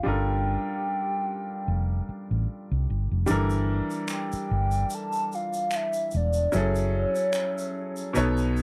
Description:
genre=R&B, neo-soul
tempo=74 BPM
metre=4/4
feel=swing 54% on 16ths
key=G minor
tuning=A4 = 440 Hz
part: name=hollow clarinet-like synth lead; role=melody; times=0.0-8.6 s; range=C#5 to A5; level=-31 LUFS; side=equal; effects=chorus
part: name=clear grand piano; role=accompaniment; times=0.0-8.6 s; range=B2 to C#5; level=-32 LUFS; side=equal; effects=none
part: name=fingered electric bass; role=bass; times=0.1-8.6 s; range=E1 to C2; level=-28 LUFS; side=equal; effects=none
part: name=egg shaker and finger snaps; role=percussion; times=3.3-8.6 s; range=none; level=-41 LUFS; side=equal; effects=none
room=little or no reverb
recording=dry, close 1970s-style studio recording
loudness=-27 LUFS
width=mono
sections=0.0-3.3 A section; 3.3-8.6 B section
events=none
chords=0.0 Gm9; 3.3 Gm69; 6.5 F#m9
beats=| 0.04 0.85 1.67 2.48 | 3.29 4.10 4.91 5.72 | 6.53 7.34 8.15

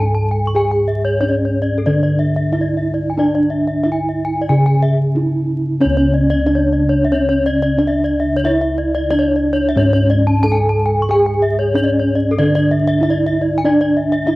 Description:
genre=Balinese gamelan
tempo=91 BPM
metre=4/4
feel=straight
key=C# pelog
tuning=A4 = 440 Hz
part: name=gamelan-type bronze metallophone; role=melody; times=0.0-14.4 s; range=C#4 to A4-20c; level=-18 LUFS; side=right 1 dB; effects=cassette tape
part: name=gamelan-type bronze metallophone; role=arpeggios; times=0.0-14.3 s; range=A4-20c to C#6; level=-20 LUFS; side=left 2 dB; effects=cassette tape
part: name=gamelan-type bossed gongs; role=bass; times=0.0-14.3 s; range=C#2 to G#4-30c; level=-17 LUFS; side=equal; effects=none
room=light reverb, small room reverb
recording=home recording on cassette, vinyl crackle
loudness=-13 LUFS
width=side -19 dB against mid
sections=0.0-14.4 A section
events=none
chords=none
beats=| 0.54 1.20 1.86 2.52 | 3.18 3.84 4.50 5.16 | 5.82 6.48 7.14 7.80 | 8.46 9.12 9.77 10.43 | 11.09 11.75 12.39 13.03 | 13.65 14.27

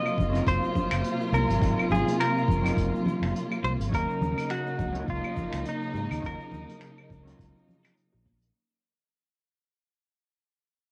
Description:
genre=sunset chillout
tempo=104 BPM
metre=4/4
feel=swing 56% on 16ths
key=Eb dorian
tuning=A4 = 435 Hz
part: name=semi-hollow electric guitar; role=melody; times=0.0-7.9 s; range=Eb4 to Eb5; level=-33 LUFS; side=equal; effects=cassette tape, tape echo
part: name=vintage hollow-body jazz guitar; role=accompaniment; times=0.0-8.5 s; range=Gb3 to F5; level=-37 LUFS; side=equal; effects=cassette tape
part: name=warm symphonic string section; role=sustained chords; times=0.0-8.5 s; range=C3 to F4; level=-34 LUFS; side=equal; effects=cassette tape
part: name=vintage brush drum kit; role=drums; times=0.1-8.5 s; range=claves, finger snaps, hi-hat, shaker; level=-39 LUFS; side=equal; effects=cassette tape
part: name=fretless electric bass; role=bass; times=0.2-8.5 s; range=Gb1 to Ab2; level=-32 LUFS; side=equal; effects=analog chorus
part: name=electronic kick drum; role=drums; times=0.2-8.4 s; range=none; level=-33 LUFS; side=equal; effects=overdrive, cassette tape
part: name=congas and bongos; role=percussion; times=0.2-8.4 s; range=none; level=-38 LUFS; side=equal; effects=none
room=moderate booth ambience, RT60 0.2 s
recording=home recording on cassette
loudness=-27 LUFS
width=mono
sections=0.0-8.5 A section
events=fade-out 2.4-8.5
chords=0.0 Ab13 (rootless); 3.9 Ebm7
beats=0.47 1.04 | 1.62 2.20 2.77 3.35 | 3.93 4.50 5.08 5.66 | 6.24 6.81 7.39 7.97

